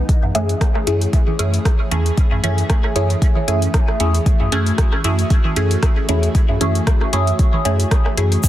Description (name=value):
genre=dub techno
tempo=115 BPM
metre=4/4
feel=swing 55% on 16ths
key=unclear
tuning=A4 = 440 Hz
part: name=airy breathy pad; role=sustained chords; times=0.0-8.5 s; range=E3 to G#4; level=-27 LUFS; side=equal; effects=chorus, sidechain pumping
part: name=filtered dub chord stab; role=stabs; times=0.0-8.4 s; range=A3 to G#4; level=-21 LUFS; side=equal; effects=phaser, sidechain pumping, dub echo
part: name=pure sine sub bass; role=bass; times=0.0-8.4 s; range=E2 to F#2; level=-18 LUFS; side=equal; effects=sidechain pumping
part: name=deep house drum kit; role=drums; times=0.1-8.5 s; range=hi-hat, rim click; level=-26 LUFS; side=left 1 dB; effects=overdrive
part: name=electronic kick drum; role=drums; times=0.1-8.5 s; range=none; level=-16 LUFS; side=equal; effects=overdrive
part: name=woodblock and congas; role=percussion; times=0.2-7.6 s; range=none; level=-30 LUFS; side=right 3 dB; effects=overdrive, sidechain pumping on perc, dub echo
part: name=egg shaker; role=percussion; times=8.4-8.5 s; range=none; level=-21 LUFS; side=left 1 dB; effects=none
room=light reverb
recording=dense, heavily limited modern master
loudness=-14 LUFS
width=side -13 dB against mid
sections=0.0-8.4 A section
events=none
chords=0.1 F#m9